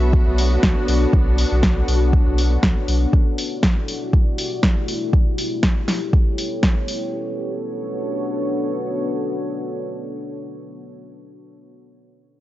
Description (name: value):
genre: deep house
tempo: 120 BPM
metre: 4/4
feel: swing 56% on 16ths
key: B minor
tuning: A4 = 440 Hz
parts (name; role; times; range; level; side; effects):
- deep dark ambient pad; sustained chords; 0.0-10.2 s; B2 to D5; -26 LUFS; left 1 dB; chorus, built-in reverb, sidechain pumping
- warm sub bass; bass; 0.0-3.1 s; B1; -18 LUFS; equal; sidechain pumping
- rich symphonic string section; texture; 0.0-3.1 s; B3 to C#6; -25 LUFS; equal; sidechain pumping
- electronic kick drum; drums; 0.1-6.7 s; none; -17 LUFS; equal; overdrive, vintage 12-bit sampler grit
- deep house drum kit; drums; 0.4-7.0 s; hi-hat, snare drum; -23 LUFS; equal; overdrive, vintage 12-bit sampler grit
room: small room ambience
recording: dry, gritty hardware recording, cassette tape, nothing above 7.7 kHz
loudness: -17 LUFS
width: side -14 dB against mid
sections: 0.0-7.1 A section; 7.1-11.1 B section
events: none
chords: 0.0 Bm9; 3.1 Em11/B; 5.1 A9/B; 7.1 Bm9